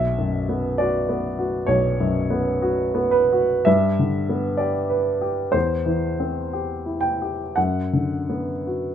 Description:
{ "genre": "classical, romantic nocturne for solo piano", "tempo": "53-67 BPM", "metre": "4/4", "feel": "rubato", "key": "B minor", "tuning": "A4 = 440 Hz", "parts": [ { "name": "warm baby grand piano", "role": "solo", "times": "0.0-8.9 s", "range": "B1 to G5", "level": "-20 LUFS", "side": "equal", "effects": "none" } ], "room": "light reverb", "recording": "close, detailed microphones", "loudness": "-20 LUFS", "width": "side -9 dB against mid", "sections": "0.0-8.9 A section", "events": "none", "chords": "0.0 Bm; 3.7 G; 5.5 C/E; 7.6 Bm/F#", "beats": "0.79 1.68 2.61 | 3.66 4.60 5.55 6.53 | 7.56 8.66" }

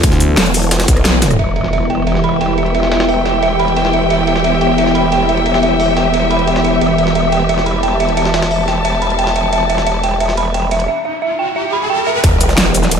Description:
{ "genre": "dark technical drum and bass", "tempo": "177 BPM", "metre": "4/4", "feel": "straight", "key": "E minor", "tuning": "A4 = 440 Hz", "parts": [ { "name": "sweeping resonant pad", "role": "sustained chords", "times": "0.0-13.0 s", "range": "E3 to A4", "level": "-18 LUFS", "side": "right 2 dB", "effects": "chorus, sidechain pumping" }, { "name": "dubstep drum kit", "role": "drums", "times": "0.0-13.0 s", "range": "cabasa, hi-hat, rim click, snare drum, toms", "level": "-16 LUFS", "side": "equal", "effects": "low-pass filter on hats, studio reverb, low-pass filter on perc, low-pass filter on snare, low-pass filter on toms" }, { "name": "electronic kick drum", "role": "drums", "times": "0.0-0.9, 12.2-12.3 s", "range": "none", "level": "-14 LUFS", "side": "equal", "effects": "studio reverb" }, { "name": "jungle sampler-style drum kit", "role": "drums", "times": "0.0-13.0 s", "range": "hi-hat, ride cymbal, snare drum", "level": "-24 LUFS", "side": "equal", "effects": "high-pass filter on cymbals, low-pass filter on cymbals, studio reverb, high-pass filter on snare, low-pass filter on snare, high-pass filter on hats, low-pass filter on hats" }, { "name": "growl bass", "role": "bass", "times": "0.4-13.0 s", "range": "E1 to B1", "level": "-18 LUFS", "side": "equal", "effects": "chorus, tube saturation" }, { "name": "dark detuned synth bell", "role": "arpeggios", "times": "1.4-12.2 s", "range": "E5 to B5", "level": "-18 LUFS", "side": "right 2 dB", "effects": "chorus, sidechain pumping, low-pass filter, dub echo" }, { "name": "impact, riser and sub drop", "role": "sound effects", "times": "1.4-2.7, 10.7-13.0 s", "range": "none", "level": "-20 LUFS", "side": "equal", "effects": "none" }, { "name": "warm studio string section", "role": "texture", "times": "1.4-10.9 s", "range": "B3 to A5", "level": "-17 LUFS", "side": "left 3 dB", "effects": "sidechain pumping" } ], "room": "moderate digital room reverb, RT60 1.2 s, digital ambience", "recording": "none", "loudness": "-11 LUFS", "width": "side -7 dB against mid", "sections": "0.0-1.4 A section; 1.4-12.2 B section", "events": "drop 0.0-1.4; band accent 1.1; drum fill 1.1; impact 1.4-2.7, 12.2-13.0; riser 10.7-12.2", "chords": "0.0 E5; 1.4 Em", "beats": "| 0.03 0.37 0.71 1.05 | 1.39 1.73 2.07 2.41 | 2.75 3.08 3.42 3.76 | 4.10 4.44 4.78 5.12 | 5.46 5.80 6.14 6.47 | 6.81 7.15 7.49 7.83 | 8.17 8.51 8.85 9.19 | 9.53 9.87 10.20 10.54 | 10.88 11.22 11.56 11.90 | 12.24 12.58 12.91" }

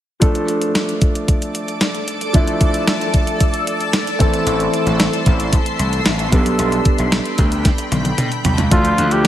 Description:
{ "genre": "1980s-style pop", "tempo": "113 BPM", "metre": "4/4", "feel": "straight", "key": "D dorian", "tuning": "A4 = 438 Hz", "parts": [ { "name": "warm concert grand piano", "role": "accompaniment", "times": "0.2-9.3 s", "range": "E3 to A4", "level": "-21 LUFS", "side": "right 1 dB", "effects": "none" }, { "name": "shimmering ambient pad", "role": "sustained chords", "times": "0.9-8.7 s", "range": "A4 to E6", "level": "-23 LUFS", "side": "left 2 dB", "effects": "chorus, built-in reverb, phaser" }, { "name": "clean 12-bit digital drum machine", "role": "drums", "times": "0.2-9.3 s", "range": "hi-hat, kick drum, snare drum, toms", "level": "-16 LUFS", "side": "equal", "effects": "overdrive" }, { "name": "gritty slap bass", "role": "bass", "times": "4.5-9.3 s", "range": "A1 to B2", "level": "-19 LUFS", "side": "equal", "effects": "overdrive" }, { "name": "clear flugelhorn", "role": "melody", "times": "8.7-9.3 s", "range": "F4 to G4", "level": "-17 LUFS", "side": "left 1 dB", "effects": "none" } ], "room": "light reverb", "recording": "lossy compression artefacts", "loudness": "-14 LUFS", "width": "side -12 dB against mid", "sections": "0.2-8.7 A section", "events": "drum fill 7.7-8.7", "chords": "0.2 Dm; 4.2 Am; 6.3 Gadd9/B; 8.7 Dm", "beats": "| 0.22 0.75 1.28 1.81 | 2.34 2.88 3.41 3.94 | 4.47 5.00 5.53 6.06 | 6.59 7.12 7.65 8.19 | 8.72 9.25" }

